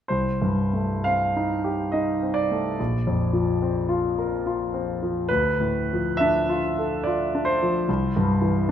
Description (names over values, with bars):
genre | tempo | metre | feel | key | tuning
classical, impressionist solo piano | 59-74 BPM | 3/4 | rubato | C dorian | A4 = 440 Hz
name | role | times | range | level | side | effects
clear concert grand piano | solo | 0.1-8.7 s | Bb1 to F5 | -21 LUFS | equal | none
room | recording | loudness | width
moderate scoring stage reverb, RT60 1.9 s | none | -21 LUFS | side -9 dB against mid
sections
0.1-8.7 A section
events
none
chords
0.1 Cm6; 2.8 Bbadd9; 5.3 Dm6; 7.9 C